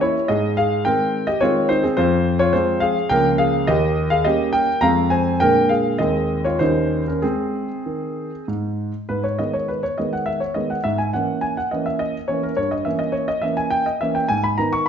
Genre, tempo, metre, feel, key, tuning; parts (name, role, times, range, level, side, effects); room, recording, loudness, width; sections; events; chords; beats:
classical-period piano sonatina; 94-108 BPM; 3/4; rubato; Ab major, G# minor from 9.1 s; A4 = 440 Hz
warm concert grand piano; solo; 0.0-14.9 s; Db2 to C#6; -18 LUFS; equal
moderate recital hall reverb, RT60 1.3 s; nothing above 7.8 kHz; -18 LUFS; side -8 dB against mid
0.0-9.1 A section; 9.1-14.9 B section
0.3 Ab; 2.0 Fm; 3.1 Bbm/Db; 3.7 Eb7; 4.8 Fm; 5.4 Bb7; 6.0 Ab/Eb; 6.6 Eb7; 7.2 Ab; 9.1 G#m; 10.8 A#m7b5/G#; 12.6 Gdim7; 14.3 G#m
| 0.29 0.86 1.42 | 1.98 2.55 3.11 | 3.69 4.25 4.83 | 5.41 6.00 6.61 | 7.23 7.86 8.48 | 9.09 9.69 10.27 | 10.84 11.42 12.00 | 12.57 13.15 13.72 | 14.30 14.87